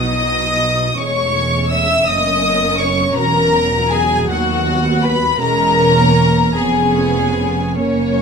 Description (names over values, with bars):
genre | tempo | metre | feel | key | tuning
classical, slow romantic movement for string orchestra | 48-56 BPM (dotted quarters) | 6/8 | rubato | unclear | A4 = 441 Hz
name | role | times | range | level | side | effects
warm studio violin section | melody | 0.0-8.2 s | C#5 to E6 | -18 LUFS | left 3 dB | none
warm symphonic violin section | second line | 0.0-8.2 s | C#4 to E5 | -18 LUFS | left 2 dB | none
warm studio viola section | accompaniment | 0.0-8.2 s | F#3 to D#4 | -21 LUFS | right 2 dB | none
dark chamber double bass section | bass | 0.0-8.2 s | E1 to D#2 | -22 LUFS | right 4 dB | none
warm studio cello section | bass | 0.0-8.2 s | D#2 to B2 | -22 LUFS | right 1 dB | none
room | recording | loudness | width
moderate scoring stage reverb, RT60 1.5 s | none | -13 LUFS | side -6 dB against mid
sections
0.0-8.2 A section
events
none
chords
0.0 B; 1.0 C#m/E; 2.1 F#; 3.2 F#7/E; 4.3 B/D#; 5.4 C#m/E; 6.6 C#7/E#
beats
| 0.99 2.09 | 3.17 4.29 | 5.41 6.56 | 7.78